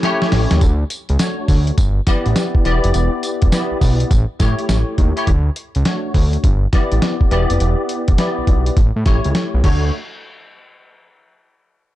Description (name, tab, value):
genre	R&B, new jack swing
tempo	103 BPM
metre	4/4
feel	swing 64% on 16ths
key	D major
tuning	A4 = 440 Hz
part	bell-like tine electric piano	accompaniment	0.0-10.0 s	A3 to D5	-21 LUFS	left 2 dB	ensemble chorus
part	dusty soul sampler-style drum kit	drums	0.0-9.8 s	crash cymbal, hi-hat, kick drum, snare drum, tambourine	-16 LUFS	equal	none
part	fat analog bass	bass	0.3-9.9 s	E1 to A2	-16 LUFS	equal	none
room	little or no reverb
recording	dark, warm production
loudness	-14 LUFS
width	side -15 dB against mid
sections	0.6-9.9 A section; 9.9-12.0 B section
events	drum fill 0.0-0.6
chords	0.0 A7; 0.6 Dmaj7; 1.8 G6; 2.6 Em7; 4.1 A7; 5.3 Dmaj7; 6.4 G6; 7.3 Em7; 8.8 A7; 9.6 Dmaj7; 9.9 N.C.